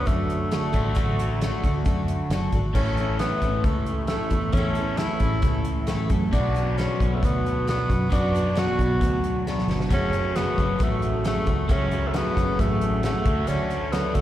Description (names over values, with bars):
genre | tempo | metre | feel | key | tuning
folk rock and heartland rock | 134 BPM | 4/4 | straight | A major | A4 = 438 Hz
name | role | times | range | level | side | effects
raspy tenor saxophone | melody | 0.0-14.2 s | A3 to F#4 | -28 LUFS | equal | plate reverb, slapback echo, analog delay
picked twelve-string acoustic guitar | accompaniment | 0.0-14.2 s | F#2 to A4 | -31 LUFS | left 3 dB | plate reverb, slapback echo
crunchy overdriven guitar | riff | 0.0-14.2 s | F#2 to A4 | -28 LUFS | equal | phaser, slapback echo
fingered electric bass | bass | 0.0-14.2 s | F#1 to F#2 | -26 LUFS | equal | none
natural country drum kit | drums | 0.1-14.2 s | crash cymbal, hi-hat, kick drum, snare drum | -26 LUFS | equal | none
room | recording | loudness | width
light reverb | live gig heard through the venue's PA, recital hall reverb | -21 LUFS | side -13 dB against mid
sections
0.0-2.8 A section; 2.8-14.2 A section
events
drum fill 9.5-9.9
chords
0.0 D; 2.8 A; 6.3 Bm; 9.9 F#m; 13.3 D